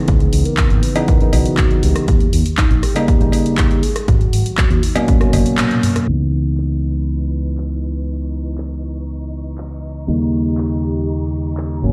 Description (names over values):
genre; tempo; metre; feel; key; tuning
nu-disco, nu disco; 120 BPM; 4/4; straight; C# dorian; A4 = 443 Hz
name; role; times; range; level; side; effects
soft octave-layered synth lead; melody; 0.0-5.8 s; C#4 to B4; -28 LUFS; equal; chorus, phaser, tape echo
bright tine electric piano; accompaniment; 0.0-11.9 s; B2 to D#4; -22 LUFS; equal; low-pass filter, tape echo
fingered electric bass with an envelope filter; bass; 0.1-11.9 s; F#1 to D#2; -21 LUFS; equal; sidechain pumping
electronic kick drum; drums; 0.1-5.2 s; none; -18 LUFS; equal; studio reverb
house drum kit; drums; 0.1-11.9 s; crash cymbal, handclaps, hi-hat, rim click, toms; -26 LUFS; equal; studio reverb
cowbell; percussion; 1.0-5.4 s; none; -27 LUFS; equal; none
warm studio string section; sustained chords; 6.1-11.9 s; E3 to C#6; -36 LUFS; equal; vintage 12-bit sampler grit, sidechain pumping
room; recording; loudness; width
light reverb, digital ambience; played on a big sound system in a bare room, large studio reverb, low-pass filter; -17 LUFS; mono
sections
0.0-6.1 A section; 6.1-11.9 B section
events
drum fill 5.3-6.1; band accent 5.6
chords
0.0 C#m9; 2.1 D#7; 3.8 G#m11; 6.1 C#m9; 10.1 D#7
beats
| 0.08 0.58 1.08 1.58 | 2.08 2.58 3.08 3.58 | 4.08 4.58 5.08 5.58 | 6.08 6.58 7.08 7.58 | 8.08 8.58 9.08 9.58 | 10.08 10.58 11.08 11.58